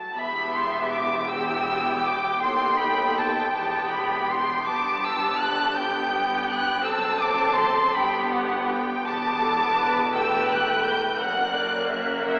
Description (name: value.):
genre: classical, slow romantic movement for string orchestra.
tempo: 55 BPM (dotted quarters).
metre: 6/8.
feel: rubato.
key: E minor.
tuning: A4 = 440 Hz.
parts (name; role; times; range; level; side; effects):
rich chamber violin section; melody; 0.0-12.4 s; E5 to G6; -25 LUFS; equal; none.
rich chamber viola section; accompaniment; 0.0-12.4 s; F#3 to B4; -28 LUFS; equal; none.
clear chamber violin section; second line; 0.2-12.4 s; D5 to A5; -26 LUFS; equal; none.
rich chamber double bass section; bass; 0.2-12.4 s; E1 to D#2; -38 LUFS; equal; none.
warm chamber cello section; bass; 0.2-12.4 s; D#2 to G2; -34 LUFS; equal; none.
room: wet cathedral reverb, RT60 4.6 s.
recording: recorded in a church or concert hall, AM radio sound.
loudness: -21 LUFS.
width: side -40 dB against mid.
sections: 0.2-12.4 A section.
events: none.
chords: 0.2 Em; 2.4 B7/D#; 3.5 Em; 4.7 G; 6.9 F#m7b5; 7.9 G; 9.0 Em7; 11.2 F#.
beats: | 0.16 1.30 | 2.42 3.55 | 4.66 5.77 | 6.85 7.95 | 9.04 10.11 | 11.18 12.26.